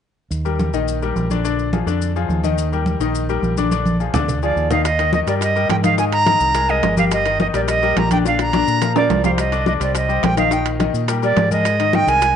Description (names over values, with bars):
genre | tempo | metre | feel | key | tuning
latin, salsa | 212 BPM | 4/4 | straight | Eb major | A4 = 440 Hz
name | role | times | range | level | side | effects
deep dub fingered electric bass | bass | 0.3-12.4 s | G1 to Bb2 | -22 LUFS | right 1 dB | none
congas | percussion | 0.3-12.4 s | none | -22 LUFS | right 1 dB | none
maracas | percussion | 0.3-12.4 s | none | -36 LUFS | left 14 dB | none
bright grand piano | accompaniment | 0.5-12.3 s | D3 to Eb5 | -22 LUFS | left 9 dB | none
bright reedy silver concert flute | melody | 4.4-12.4 s | D5 to Bb5 | -18 LUFS | right 3 dB | none
bongos | percussion | 4.8-12.4 s | none | -28 LUFS | left 11 dB | none
timbales | percussion | 4.9-12.4 s | none | -26 LUFS | right 14 dB | none
room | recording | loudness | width
moderate spring reverb, RT60 1.5 s, small room ambience | 1960s-style stereo with parts hard left and right, nothing above 10.5 kHz | -15 LUFS | side -8 dB against mid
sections
0.3-4.8 A section; 4.8-12.4 B section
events
drum fill 3.7-4.8, 8.2-9.4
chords
0.3 Eb; 1.4 Bb7; 2.6 Eb; 3.7 Bb7; 4.8 Eb; 6.0 Abadd9; 7.1 Eb/G; 8.2 Bb; 9.4 Cmadd9; 10.5 Eb/Bb; 11.6 Abadd9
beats
| 0.31 0.59 0.88 1.16 | 1.44 1.73 2.01 2.29 | 2.58 2.86 3.15 3.43 | 3.71 4.00 4.28 4.56 | 4.85 5.13 5.41 5.70 | 5.98 6.26 6.55 6.83 | 7.12 7.40 7.68 7.97 | 8.25 8.53 8.82 9.10 | 9.38 9.67 9.95 10.23 | 10.52 10.80 11.08 11.37 | 11.65 11.93 12.22